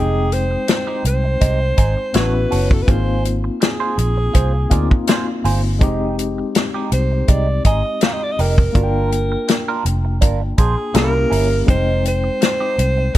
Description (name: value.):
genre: lush 1970s-style soul.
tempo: 82 BPM.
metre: 4/4.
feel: swing 54% on 16ths.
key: F dorian.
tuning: A4 = 440 Hz.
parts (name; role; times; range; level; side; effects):
warm alto saxophone; melody; 0.0-13.2 s; Ab4 to F5; -22 LUFS; right 1 dB; none.
barky tine electric piano; accompaniment; 0.0-13.2 s; G3 to G5; -24 LUFS; left 4 dB; fast tremolo.
clean electric guitar; riff; 0.0-13.2 s; Ab3 to D5; -26 LUFS; right 6 dB; wah.
vintage muted fingered electric bass; bass; 0.0-13.2 s; F1 to D2; -18 LUFS; equal; none.
warm soul drum kit; drums; 0.3-13.2 s; hi-hat, kick drum, snare drum; -17 LUFS; equal; none.
room: small room ambience.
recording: none.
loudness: -15 LUFS.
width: side -14 dB against mid.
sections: 0.0-13.2 A section.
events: none.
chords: 0.0 Fm9; 2.1 A6; 2.9 Ab6; 5.8 Fm9; 8.7 Gm7; 10.9 C7b9; 11.7 Fm9.